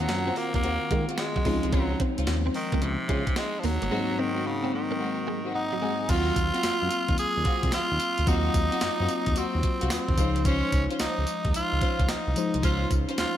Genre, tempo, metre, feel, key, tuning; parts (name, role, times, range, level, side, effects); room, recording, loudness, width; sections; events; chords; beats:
R&B, new jack swing; 110 BPM; 4/4; swing 66% on 16ths; Eb dorian; A4 = 440 Hz
raspy tenor saxophone; melody; 0.0-13.4 s; C3 to Ab4; -29 LUFS; equal; slapback echo
mellow FM electric piano; accompaniment; 0.0-13.4 s; Ab2 to Ab5; -32 LUFS; left 2 dB; chorus
warm studio string section; stabs; 0.0-13.2 s; Ab3 to C5; -34 LUFS; left 1 dB
smooth synth bass; bass; 0.0-13.3 s; G1 to Eb3; -28 LUFS; equal
crisp 8-bit digital drum machine; drums; 0.0-13.3 s; crash cymbal, hi-hat, kick drum, snare drum, tambourine; -28 LUFS; equal
direct-recorded clean electric guitar; riff; 0.3-6.0 s; Gb3 to Db4; -34 LUFS; right 1 dB; ensemble chorus
moderate scoring stage reverb, RT60 2.0 s; big arena sound; -24 LUFS; side -11 dB against mid
0.0-6.1 A section; 6.1-13.4 B section
FM electric piano fill 5.3-6.1
0.0 Ebm69; 1.5 Dbmaj7; 3.9 Ab7; 6.1 Ebm69; 10.2 Dbmaj7
0.09 0.64 1.18 | 1.73 2.27 2.82 3.36 | 3.91 4.45 5.00 5.54 | 6.09 6.63 7.18 7.73 | 8.27 8.82 9.36 9.91 | 10.45 11.00 11.54 12.09 | 12.63 13.18